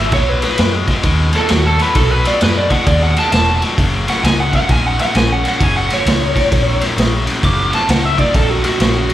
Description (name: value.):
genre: electric blues shuffle.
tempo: 132 BPM.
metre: 4/4.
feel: swing 64% on 8ths.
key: B major.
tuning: A4 = 440 Hz.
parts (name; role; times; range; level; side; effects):
lead guitar through a small cranked amp; melody; 0.0-9.1 s; F#4 to D6; -17 LUFS; right 1 dB; overdrive, slapback echo.
overdriven electric guitar; riff; 0.0-9.1 s; E2 to G#3; -20 LUFS; left 4 dB; slapback echo.
vintage muted fingered electric bass; bass; 0.0-9.1 s; E1 to F#2; -18 LUFS; equal; none.
raw garage drum kit; drums; 0.1-9.1 s; kick drum, ride cymbal, snare drum; -16 LUFS; right 1 dB; none.
room: small room ambience.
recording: live gig heard through the venue's PA, club reverb.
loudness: -12 LUFS.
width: side -13 dB against mid.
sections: 0.0-9.1 A section.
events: lead electric guitar solo 0.0-9.1.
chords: 0.1 B; 3.8 F#.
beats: | 0.13 0.59 1.05 1.50 | 1.96 2.42 2.87 3.33 | 3.79 4.24 4.70 5.16 | 5.61 6.07 6.52 6.98 | 7.43 7.89 8.35 8.80.